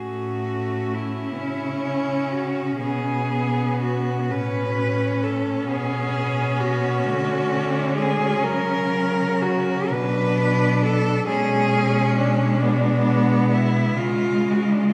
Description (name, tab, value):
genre	classical, lyrical piece for cello ensemble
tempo	38-45 BPM (dotted quarters)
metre	6/8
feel	rubato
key	unclear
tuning	A4 = 440 Hz
part	clear cello	melody	0.0-14.9 s	D4 to B4	-27 LUFS	equal	none
part	rich cello	second line	0.0-14.9 s	G#3 to D4	-28 LUFS	equal	none
part	rich cello	accompaniment	0.0-14.9 s	F#3 to C#4	-29 LUFS	equal	none
part	rich cello	bass	0.0-14.9 s	A2 to D3	-27 LUFS	equal	none
room	wet church reverb, RT60 2.9 s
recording	recorded in a church or concert hall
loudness	-22 LUFS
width	mono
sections	0.0-14.9 A section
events	none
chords	0.0 A; 2.8 F#sus24/B; 4.3 A; 5.7 Bm7; 8.4 F#/C#; 9.9 Bm; 11.3 G#dim/B; 14.0 C#